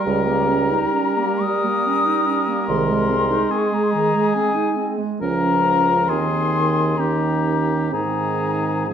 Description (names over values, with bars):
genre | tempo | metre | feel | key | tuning
classical, slow romantic movement for wind quintet | 61-73 BPM | 3/4 | rubato | Ab major | A4 = 443 Hz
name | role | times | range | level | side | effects
concert flute | melody | 0.0-8.9 s | Ab5 to Eb6 | -22 LUFS | left 6 dB | none
warm oboe | second line | 0.0-8.9 s | G4 to Bb4 | -26 LUFS | left 2 dB | none
warm French horn | accompaniment | 0.0-8.9 s | Eb3 to Ab3 | -23 LUFS | right 1 dB | none
warm clarinet | accompaniment | 0.0-8.9 s | Eb3 to Eb4 | -25 LUFS | right 8 dB | none
mellow bassoon | bass | 0.1-8.9 s | C2 to Ab2 | -24 LUFS | right 2 dB | none
room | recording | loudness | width
wet recital hall reverb, RT60 1.4 s | dark, warm production | -17 LUFS | side -8 dB against mid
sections
0.0-8.9 A section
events
none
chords
0.1 Eb7/Db; 2.7 Ab/C; 5.2 Bbm/Db; 6.1 Ab/Eb; 7.0 Eb7; 7.9 Ab